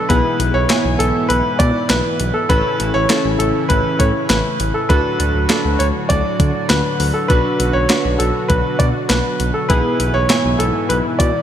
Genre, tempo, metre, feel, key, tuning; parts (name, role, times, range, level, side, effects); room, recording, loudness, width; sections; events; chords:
synth-pop; 100 BPM; 4/4; straight; A4 = 435 Hz
warm grand piano; melody; 0.0-11.4 s; A4 to D5; -19 LUFS; equal; ping-pong delay
brassy analog pad; sustained chords; 0.0-11.4 s; G#2 to F#4; -23 LUFS; equal; chorus
warm analog keys; accompaniment; 0.1-11.3 s; B3 to G#5; -23 LUFS; equal; chorus
smooth synth bass; bass; 0.1-11.3 s; A1 to D3; -20 LUFS; equal
clean 12-bit digital drum machine; drums; 0.1-11.3 s; handclaps, hi-hat, kick drum, snare drum; -18 LUFS; equal
moderate lush hall reverb, RT60 2.9 s; bright 1980s-style digital production; -14 LUFS; side -10 dB against mid
0.0-11.4 A section
0.1 E/B; 2.5 A; 4.9 D; 7.3 Bm; 9.7 E/B